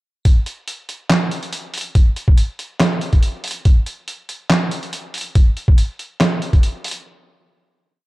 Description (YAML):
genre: dubstep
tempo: 141 BPM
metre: 4/4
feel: swing 53% on 16ths, half-time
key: none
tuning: none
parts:
  - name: electronic kick drum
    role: drums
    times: 0.3-6.6 s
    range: none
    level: -12 LUFS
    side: equal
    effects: none
  - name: trip hop sampler-style drum kit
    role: drums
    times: 0.3-7.0 s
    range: handclaps, hi-hat, snare drum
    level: -20 LUFS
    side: right 1 dB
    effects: none
room: light reverb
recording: dark, warm production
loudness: -15 LUFS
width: side -20 dB against mid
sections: 0.2-7.1 drop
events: drop 0.2-7.1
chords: none